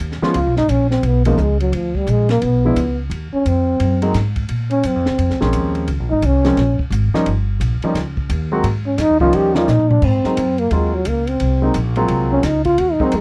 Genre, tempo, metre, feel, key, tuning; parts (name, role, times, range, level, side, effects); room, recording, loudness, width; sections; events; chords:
jazz, small-group swing and bop; 174 BPM; 4/4; swing 63% on 8ths; Ab mixolydian; A4 = 439 Hz
upright bass; bass; 0.0-13.2 s; G1 to Bb2; -21 LUFS; equal
compact cocktail drum kit; drums; 0.1-13.2 s; crash cymbal, hi-hat, kick drum, ride cymbal, snare drum, toms; -30 LUFS; equal
warm grand piano; accompaniment; 0.2-13.1 s; F3 to Gb4; -21 LUFS; equal
breathy trombone; second line; 0.4-13.2 s; F3 to G4; -20 LUFS; equal
light reverb; dry, close 1970s-style studio recording; -17 LUFS; mono
0.0-10.0 A section; 10.0-13.2 A section
trombone solo 0.0-13.2; drum fill 9.7-10.0
0.0 Db7; 1.7 D5; 3.1 Ab7; 4.5 Bbm7; 7.3 Eb7; 8.6 Ab; 9.3 Eb7; 10.0 Ab7